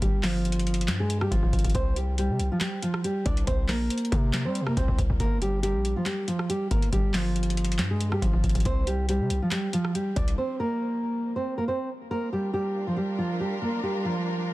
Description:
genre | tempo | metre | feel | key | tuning
hip hop, trap | 139 BPM | 4/4 | half-time | G phrygian | A4 = 440 Hz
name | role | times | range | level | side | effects
nylon-string guitar | melody | 0.0-14.5 s | F3 to D5 | -28 LUFS | right 1 dB | ping-pong delay
hard-hitting 808-style bass | bass | 0.0-10.4 s | G1 to G3 | -27 LUFS | equal | none
booming analog drum machine | drums | 0.0-10.4 s | handclaps, hi-hat, kick drum, rim click, snare drum | -28 LUFS | equal | none
dark chamber string section | sustained chords | 12.1-14.5 s | G3 to Bb4 | -34 LUFS | left 1 dB | none
room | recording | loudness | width
little or no reverb | dense, heavily limited modern master | -24 LUFS | side -18 dB against mid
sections
0.0-12.1 A section; 12.1-14.5 B section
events
break 10.4-12.1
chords
0.0 G7(no3); 1.7 C5; 5.2 Gm7; 8.7 C5; 12.1 Gm7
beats
| 0.02 0.45 0.88 1.31 | 1.75 2.18 2.61 3.04 | 3.47 3.90 4.34 4.77 | 5.20 5.63 6.06 6.49 | 6.93 7.36 7.79 8.22 | 8.65 9.08 9.52 9.95 | 10.38 10.81 11.24 11.67 | 12.11 12.54 12.97 13.40 | 13.83 14.26

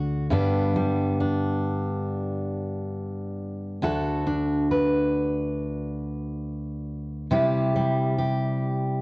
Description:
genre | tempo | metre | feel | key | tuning
folk, solo fingerstyle acoustic guitar | 69 BPM | 4/4 | straight | G major | A4 = 440 Hz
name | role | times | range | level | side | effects
fingerpicked steel-string acoustic guitar | solo | 0.0-9.0 s | D2 to B4 | -23 LUFS | equal | none
room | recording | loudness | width
moderate concert hall reverb, RT60 2.0 s | worn, warbling old tape, cassette tape, warbly pitch drift | -23 LUFS | side -25 dB against mid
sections
0.3-9.0 A section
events
none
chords
0.3 G; 3.8 D; 7.3 C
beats
| 0.31 1.20 2.08 2.95 | 3.83 4.70 5.57 6.44 | 7.31 8.18

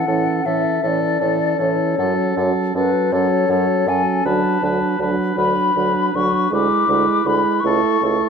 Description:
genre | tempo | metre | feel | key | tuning
classical, slow romantic movement for wind quintet | 53 BPM (dotted quarters) | 6/8 | rubato | A major | A4 = 439 Hz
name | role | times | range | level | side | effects
mellow hollow silver concert flute | melody | 0.0-8.3 s | B4 to D6 | -20 LUFS | left 6 dB | none
warm oboe | second line | 0.0-8.3 s | A4 to B4 | -25 LUFS | left 1 dB | none
mellow clarinet | accompaniment | 0.0-8.3 s | C#4 to E4 | -24 LUFS | right 16 dB | none
warm French horn | accompaniment | 0.0-8.3 s | E3 to A3 | -23 LUFS | right 2 dB | none
mellow bassoon | bass | 0.1-8.2 s | C#2 to A2 | -24 LUFS | right 3 dB | none
room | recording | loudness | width
moderate scoring stage reverb, RT60 1.9 s | close, detailed microphones | -16 LUFS | side -6 dB against mid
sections
0.0-8.3 A section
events
none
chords
0.0 A; 2.0 F#m; 4.2 Bm7/D; 6.5 E7/D; 7.6 A/C#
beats
0.84 | 1.98 3.12 | 4.25 5.37 | 6.52 7.64

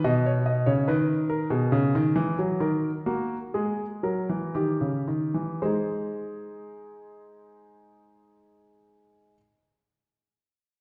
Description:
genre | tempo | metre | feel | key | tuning
classical, baroque-style two-part invention for grand piano | 54-74 BPM | 3/4 | straight | unclear | A4 = 441 Hz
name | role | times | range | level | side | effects
warm concert grand piano | solo | 0.0-9.4 s | B2 to D#5 | -26 LUFS | equal | none
room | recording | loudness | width
wet recital hall reverb, RT60 1.6 s | heard from further back in the room | -26 LUFS | mono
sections
0.0-5.6 A section; 5.6-9.0 B section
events
slowing down 0.0-5.6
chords
0.0 B; 1.7 C#m; 2.6 D#sus4; 4.5 D#7; 5.6 G#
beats
| 0.04 0.87 1.72 | 2.61 3.55 4.55 | 5.63 6.75 7.87

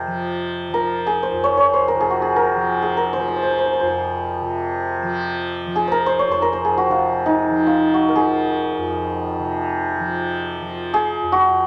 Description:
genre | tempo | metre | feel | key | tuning
indian classical, Hindustani | free time | none | none | F raga bhairavi | A4 = 440 Hz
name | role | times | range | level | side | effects
santur | melody | 0.0-11.7 s | Eb4 to Db5 | -20 LUFS | equal | none
tanpura | drone | 0.0-11.7 s | F2 to F3 | -27 LUFS | equal | none
room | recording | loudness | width
moderate studio reverb, RT60 0.5 s | none | -20 LUFS | mono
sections
0.0-11.7 A section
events
none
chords
none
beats
free time

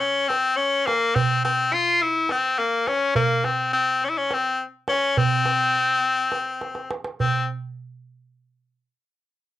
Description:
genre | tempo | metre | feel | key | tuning
Turkish makam ensemble | 209 BPM (eighths) | 7/8 | straight | C makam hicaz | A4 = 437 Hz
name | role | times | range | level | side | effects
edgy tenor saxophone | melody | 0.0-7.5 s | Bb3 to F4 | -20 LUFS | left 2 dB | cassette tape
darbuka | percussion | 0.0-7.5 s | none | -26 LUFS | right 4 dB | none
room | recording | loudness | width
moderate studio ambience, RT60 0.5 s | home recording on cassette | -20 LUFS | side -14 dB against mid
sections
0.0-7.2 A section; 7.2-9.2 B section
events
drum fill 6.6-7.2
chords
none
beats
0.01 0.30 0.59 0.87 | 1.16 1.45 1.73 2.02 2.31 2.60 2.88 | 3.17 3.46 3.74 4.03 4.32 4.60 4.89 | 5.18 5.47 5.75 6.04 6.33 6.62 6.90 | 7.19

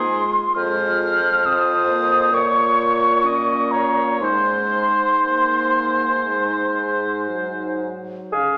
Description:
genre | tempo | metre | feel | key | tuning
classical, slow romantic movement for wind quintet | 56-70 BPM | 4/4 | rubato | unclear | A4 = 442 Hz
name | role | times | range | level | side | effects
mellow hollow silver concert flute | melody | 0.0-8.6 s | F5 to F6 | -21 LUFS | equal | none
warm oboe | second line | 0.0-8.6 s | Ab4 to F5 | -26 LUFS | equal | none
dark clarinet | accompaniment | 0.0-8.6 s | Db4 to F4 | -34 LUFS | equal | none
mellow French horn | accompaniment | 0.0-8.6 s | Db3 to C4 | -32 LUFS | equal | none
mellow bassoon | bass | 0.0-8.6 s | F2 to Ab4 | -27 LUFS | equal | none
room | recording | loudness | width
wet scoring stage reverb, RT60 1.6 s | none | -19 LUFS | mono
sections
0.0-8.3 A section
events
none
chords
0.0 Ab; 0.6 Fm; 2.3 Bbm; 4.2 Ab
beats
| 0.56 1.44 2.33 3.25 | 4.21 5.23 6.26 7.30 | 8.34

